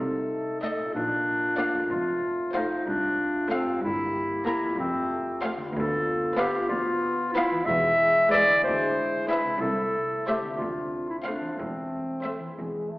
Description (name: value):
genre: cinematic, playful, whimsical film cue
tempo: 62 BPM (dotted quarters)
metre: 6/8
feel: straight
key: A minor from 5.7 s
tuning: A4 = 442 Hz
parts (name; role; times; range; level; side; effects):
- warm clarinet; second line; 0.0-12.5 s; C4 to E5; -25 LUFS; equal; none
- warm French horn section; sustained chords; 0.0-13.0 s; G#3 to G4; -32 LUFS; equal; none
- concert harp; arpeggios; 0.0-13.0 s; F2 to Eb5; -38 LUFS; left 1 dB; none
- rich chamber cello section; bass; 0.0-13.0 s; C2 to C3; -37 LUFS; right 1 dB; none
- rich chamber double bass section; bass; 0.0-13.0 s; E1 to D2; -40 LUFS; right 1 dB; none
- rich studio violin section; melody; 0.6-12.5 s; Eb5 to Bb5; -34 LUFS; equal; none
- warm symphonic violin section; second line; 0.6-12.5 s; Bb4 to Eb5; -38 LUFS; equal; none
- rich chamber viola section; accompaniment; 0.6-12.5 s; G#3 to B3; -36 LUFS; equal; none
room: wet recital hall reverb, RT60 1.6 s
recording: recorded in a church or concert hall, AM radio sound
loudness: -24 LUFS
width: side -20 dB against mid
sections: 0.0-13.0 A section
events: none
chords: 0.0 Adim/C; 0.9 Bb; 1.9 F; 3.8 Edim/G; 4.8 F; 5.7 Bm7b5/D; 7.7 E; 8.6 E7/D; 9.6 Am/C; 10.6 Dm7; 11.6 Am/E